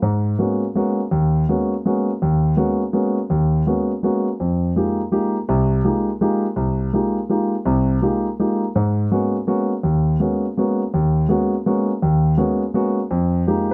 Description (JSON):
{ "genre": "jazz", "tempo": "165 BPM", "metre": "3/4", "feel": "swing 64% on 8ths", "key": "unclear", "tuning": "A4 = 441 Hz", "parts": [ { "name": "warm concert grand piano", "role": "solo", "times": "0.0-13.7 s", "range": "C2 to G4", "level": "-20 LUFS", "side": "equal", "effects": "none" } ], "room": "light reverb", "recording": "close, detailed microphones", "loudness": "-20 LUFS", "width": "mono", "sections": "0.0-13.1 A section", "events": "none", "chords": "0.0 Abm11; 4.4 Fm11; 8.7 Abm11; 13.1 Fm11" }